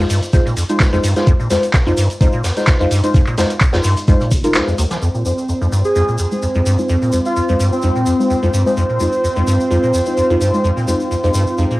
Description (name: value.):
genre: acid house.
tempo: 128 BPM.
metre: 4/4.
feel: swing 54% on 16ths.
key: F minor.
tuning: A4 = 435 Hz.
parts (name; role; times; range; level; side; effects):
liquid acid bass; riff; 0.0-11.8 s; F1 to F3; -18 LUFS; equal; tube saturation, wide subtle chorus.
deep mellow chord stab; stabs; 0.0-11.7 s; Ab3 to C5; -20 LUFS; equal; chorus, phaser, analog delay.
booming analog drum machine; drums; 0.1-5.0 s; handclaps, hi-hat; -22 LUFS; equal; cassette tape.
raw garage drum kit; drums; 0.1-5.0 s; hi-hat, shaker, snare drum; -27 LUFS; equal; sidechain pumping on hats, high-pass filter on hats, cassette tape, high-pass filter on snare, sidechain pumping on perc, high-pass filter on perc, high-pass filter on room.
tube shaker; percussion; 0.1-11.8 s; none; -31 LUFS; left 1 dB; none.
electronic kick drum; drums; 0.3-4.4 s; none; -13 LUFS; equal; cassette tape.
lush unison pad; sustained chords; 5.0-11.8 s; C4 to C5; -20 LUFS; right 1 dB; chorus, sidechain pumping.
granular cloud pad; texture; 6.3-11.8 s; F4 to G5; -27 LUFS; right 1 dB; built-in reverb, sidechain pumping.
airy dreamy lead; melody; 5.8-8.4 s; C4 to Ab4; -20 LUFS; left 1 dB; chorus, cassette tape, analog delay.
room: wet small room reverb, RT60 0.5 s.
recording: home recording on cassette.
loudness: -13 LUFS.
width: side -19 dB against mid.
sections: 0.0-5.0 A section; 5.0-11.8 B section.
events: break 4.5-5.0; filter sweep on acid bass 5.0-11.8; filter sweep on synth stab 5.0-11.8.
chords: 0.0 Fm7.